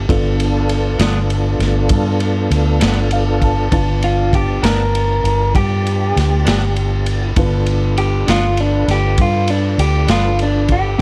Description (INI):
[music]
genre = slow blues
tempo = 66 BPM (dotted quarters)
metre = 12/8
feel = straight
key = G mixolydian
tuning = A4 = 440 Hz
[part]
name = electric guitar through a small old amp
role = melody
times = 0.0-11.0 s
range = D4 to Bb4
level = -21 LUFS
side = equal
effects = none
[part]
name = dark upright piano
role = accompaniment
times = 0.0-11.0 s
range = Bb3 to A5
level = -28 LUFS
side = equal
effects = none
[part]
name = tonewheel organ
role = sustained chords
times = 0.0-11.0 s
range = B3 to A5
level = -26 LUFS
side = equal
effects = slow rotary speaker, chorus vibrato
[part]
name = vintage muted fingered electric bass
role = bass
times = 0.0-10.9 s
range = G1 to G2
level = -19 LUFS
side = equal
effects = none
[part]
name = crunchy breakbeat drum kit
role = drums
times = 0.1-10.8 s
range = kick drum, ride cymbal, snare drum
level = -23 LUFS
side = equal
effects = none
[part]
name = clean electric guitar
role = accompaniment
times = 1.0-11.0 s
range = G2 to D4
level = -27 LUFS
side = equal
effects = harmonic tremolo
[sound]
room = studio reverb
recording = none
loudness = -16 LUFS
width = mono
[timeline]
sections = 0.0-11.0 A section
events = clean electric guitar solo 0.0-11.0; upright piano fill 2.8-3.7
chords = 0.0 G7